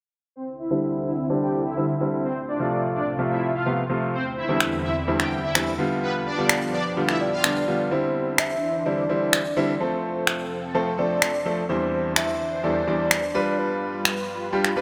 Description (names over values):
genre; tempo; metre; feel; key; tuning
dance-pop; 127 BPM; 4/4; straight; C major; A4 = 440 Hz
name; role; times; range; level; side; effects
soft supersaw; melody; 0.4-7.5 s; B3 to G5; -31 LUFS; equal; low-pass filter, delay
lush unison pad; sustained chords; 0.6-14.8 s; E2 to C5; -33 LUFS; equal; chorus, phaser, low-pass filter
clear grand piano; accompaniment; 0.7-14.8 s; E2 to D5; -27 LUFS; equal; low-pass filter
electronic finger snaps; drums; 4.6-14.8 s; none; -26 LUFS; equal; none
soft octave-layered synth lead; melody; 7.2-14.1 s; B4 to E5; -29 LUFS; equal; chorus, tremolo, delay
room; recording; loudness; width
light reverb, digital ambience; none; -24 LUFS; mono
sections
0.4-7.9 A section; 7.9-14.8 B section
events
filter sweep 0.4-7.9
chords
0.4 Cadd9; 2.2 F; 4.1 Cadd9/E; 5.8 G7; 7.9 Cadd9; 9.8 F; 11.7 Cadd9/E; 13.3 G7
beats
| 0.35 0.83 1.30 1.77 | 2.24 2.72 3.19 3.66 | 4.13 4.61 5.08 5.55 | 6.02 6.50 6.97 7.44 | 7.91 8.39 8.86 9.33 | 9.80 10.28 10.75 11.22 | 11.69 12.16 12.64 13.11 | 13.58 14.05 14.53